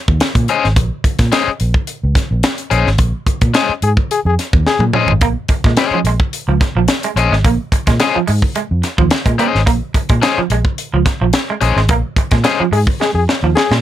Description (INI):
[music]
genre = funk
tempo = 108 BPM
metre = 4/4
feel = straight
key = Bb minor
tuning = A4 = 441 Hz
[part]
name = vintage muted fingered electric bass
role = bass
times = 0.1-13.8 s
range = Ab1 to Bb2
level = -16 LUFS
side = equal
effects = none
[part]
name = tight funk drum kit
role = drums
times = 0.1-13.8 s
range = hi-hat, kick drum, snare drum, toms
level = -16 LUFS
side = equal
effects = none
[part]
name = overdriven electric guitar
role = accompaniment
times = 0.5-12.6 s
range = Db4 to Eb5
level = -15 LUFS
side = left 8 dB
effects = none
[part]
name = warm trombone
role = second line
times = 3.8-4.8, 12.7-13.7 s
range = Ab4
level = -16 LUFS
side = left 5 dB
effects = none
[part]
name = electric guitar at the edge of break-up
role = riff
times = 5.2-13.8 s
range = F3 to Bb3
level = -19 LUFS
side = right 7 dB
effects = lush chorus
[sound]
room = little or no reverb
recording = none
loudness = -12 LUFS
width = side -12 dB against mid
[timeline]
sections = 0.0-13.8 A section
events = band accent 3.0-5.2, 11.9-13.8; drum fill 4.7-5.2, 13.0-13.8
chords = 0.0 Bbm11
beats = 0.21 | 0.77 1.32 1.88 2.44 | 2.99 3.55 4.11 4.66 | 5.22 5.77 6.33 6.88 | 7.44 8.00 8.55 9.11 | 9.66 10.22 10.78 11.34 | 11.89 12.45 13.01 13.56